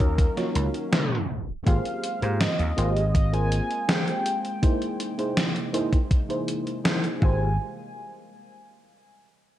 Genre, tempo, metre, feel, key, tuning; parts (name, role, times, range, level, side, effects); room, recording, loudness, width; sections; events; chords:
vaporwave; 81 BPM; 4/4; straight; Ab major; A4 = 440 Hz
warm velvety synth lead; melody; 0.0-7.6 s; Bb4 to Ab5; -32 LUFS; equal; chorus, tape echo
mellow FM electric piano; accompaniment; 0.0-7.5 s; Bb3 to Db5; -29 LUFS; right 1 dB; analog chorus, analog delay
warbly tape-like pad; sustained chords; 0.0-7.6 s; C3 to F5; -36 LUFS; equal; chorus, built-in reverb
vintage slap bass; bass; 0.0-7.6 s; Ab1 to Ab2; -24 LUFS; equal
electronic kick drum; drums; 0.0-7.4 s; -21 LUFS; equal
gated 80s digital drum machine; drums; 0.0-7.2 s; hi-hat, snare drum; -26 LUFS; equal; gated reverb, gated reverb snare
light reverb; tape stop; -22 LUFS; side -13 dB against mid
0.0-1.7 A section; 1.7-7.6 B section; 7.6-9.6 C section
tape stop 0.9-1.7; filter sweep on ambient pad 1.7-7.6
0.0 Ebm9; 1.7 Abmaj13; 4.6 C7alt; 7.2 Abmaj13; 7.6 N.C.